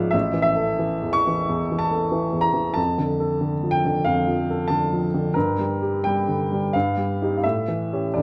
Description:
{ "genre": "classical, romantic character piece for solo piano", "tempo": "80-96 BPM", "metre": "4/4", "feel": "rubato", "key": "D minor", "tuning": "A4 = 444 Hz", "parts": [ { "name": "clear upright piano", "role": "solo", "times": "0.0-8.2 s", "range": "A1 to C#6", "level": "-22 LUFS", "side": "equal", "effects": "none" } ], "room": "moderate recital hall reverb, RT60 1.4 s", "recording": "dark, warm production", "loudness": "-23 LUFS", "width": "mono", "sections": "0.0-8.2 A section", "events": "none", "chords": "0.1 A; 2.8 Dm/F; 5.4 Gm; 6.7 Eb/G; 7.4 A7" }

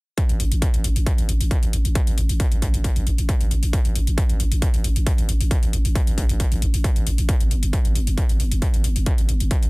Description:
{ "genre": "driving peak-time techno", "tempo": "135 BPM", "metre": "4/4", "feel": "straight", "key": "unclear", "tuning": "A4 = 440 Hz", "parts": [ { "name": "electronic hi-hat", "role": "drums", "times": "0.2-9.7 s", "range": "none", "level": "-31 LUFS", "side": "left 3 dB", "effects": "none" }, { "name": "electronic kick drum", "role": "drums", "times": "0.2-9.6 s", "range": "none", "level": "-20 LUFS", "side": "equal", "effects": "distortion" }, { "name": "growling 808-style bass", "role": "bass", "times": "0.3-9.7 s", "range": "G1 to A1", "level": "-22 LUFS", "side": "equal", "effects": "overdrive, sidechain pumping, low-pass filter" } ], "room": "little or no reverb", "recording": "dense, heavily limited modern master", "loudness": "-18 LUFS", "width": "side -28 dB against mid", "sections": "0.2-9.7 A section", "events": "none", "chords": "none" }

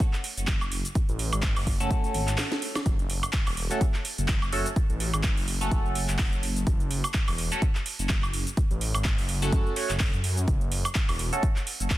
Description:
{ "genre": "bass house", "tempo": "126 BPM", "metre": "4/4", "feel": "swing 56% on 16ths", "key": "F# minor", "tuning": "A4 = 439 Hz", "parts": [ { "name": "electronic kick drum", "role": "drums", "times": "0.0-12.0 s", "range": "none", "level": "-25 LUFS", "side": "equal", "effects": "small room reverb" }, { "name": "house drum kit", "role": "drums", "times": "0.0-12.0 s", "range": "cabasa, handclaps, hi-hat, snare drum, woodblock", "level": "-31 LUFS", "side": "right 1 dB", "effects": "small room reverb" }, { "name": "phased detuned saw bass", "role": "bass", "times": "0.4-12.0 s", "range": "E1 to F#2", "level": "-29 LUFS", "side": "equal", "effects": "phaser, tube saturation, sidechain pumping" }, { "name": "band-passed chord stab", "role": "stabs", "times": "1.8-11.4 s", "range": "A3 to C#5", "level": "-32 LUFS", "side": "right 1 dB", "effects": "phaser, sidechain pumping, digital delay" } ], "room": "digital ambience", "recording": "dense, heavily limited modern master", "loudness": "-24 LUFS", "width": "side -16 dB against mid", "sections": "0.0-12.0 A section", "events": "break 2.4-2.9; drum fill 2.4-2.9", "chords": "0.0 F#m" }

